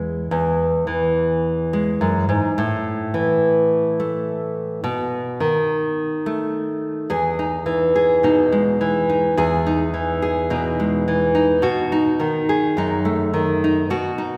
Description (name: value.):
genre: acoustic folk duo or small band.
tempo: 106 BPM.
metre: 4/4.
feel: straight.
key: E major.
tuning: A4 = 440 Hz.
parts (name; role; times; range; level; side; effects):
nylon-string guitar; solo; 0.0-14.4 s; E2 to G#4; -20 LUFS; equal; none.
room: wet concert hall reverb, RT60 2.0 s.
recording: recorded in a church or concert hall.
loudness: -20 LUFS.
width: mono.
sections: 0.0-7.1 A section; 7.1-14.4 B section.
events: none.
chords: 0.0 E; 2.6 A5; 4.8 B7; 7.1 Emaj7; 11.6 B7.